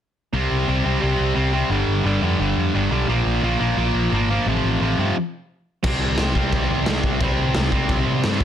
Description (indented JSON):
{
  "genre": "punk rock",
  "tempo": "174 BPM",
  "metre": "4/4",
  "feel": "straight",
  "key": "unclear",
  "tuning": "A4 = 440 Hz",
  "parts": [
    { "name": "sludgy distorted guitar", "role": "riff", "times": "0.3-8.4 s", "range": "F2 to C4", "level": "-20 LUFS", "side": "equal", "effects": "overdrive" },
    { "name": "picked electric bass", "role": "bass", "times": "0.3-8.4 s", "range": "F1 to C3", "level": "-23 LUFS", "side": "equal", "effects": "none" },
    { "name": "raw garage drum kit", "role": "drums", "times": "5.8-8.4 s", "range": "crash cymbal, kick drum, snare drum", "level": "-22 LUFS", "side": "equal", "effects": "none" }
  ],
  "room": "light reverb",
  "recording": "dense, heavily limited modern master",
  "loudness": "-18 LUFS",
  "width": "side -10 dB against mid",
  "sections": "0.3-5.8 A section; 5.8-8.4 B section",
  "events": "stop 5.2-5.8",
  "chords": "0.3 C5; 1.7 G5; 3.1 Bb5; 4.5 F/A; 5.8 C5"
}